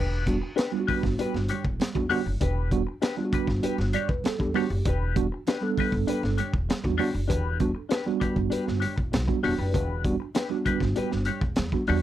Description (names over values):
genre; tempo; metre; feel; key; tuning
funk; 98 BPM; 4/4; straight; E dorian; A4 = 438 Hz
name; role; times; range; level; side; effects
clean electric guitar; accompaniment; 0.0-12.0 s; D4 to C#5; -30 LUFS; left 6 dB; wah, harmonic tremolo
upright bass; bass; 0.0-12.0 s; E1 to E2; -29 LUFS; equal; none
mellow tine electric piano; stabs; 0.3-12.0 s; G3 to D5; -27 LUFS; right 4 dB; medium stereo tremolo
crunchy breakbeat drum kit; drums; 0.3-12.0 s; hi-hat, kick drum, snare drum; -29 LUFS; equal; none
congas; percussion; 0.3-12.0 s; none; -37 LUFS; right 7 dB; none
room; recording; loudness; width
little or no reverb; dry, close 1970s-style studio recording; -24 LUFS; side -12 dB against mid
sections
0.0-12.0 A section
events
tine electric piano fill 3.6-4.9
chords
0.0 Em7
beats
0.57 1.19 1.80 | 2.41 3.02 3.63 4.24 | 4.86 5.47 6.08 6.69 | 7.30 7.91 8.52 9.13 | 9.74 10.36 10.97 11.58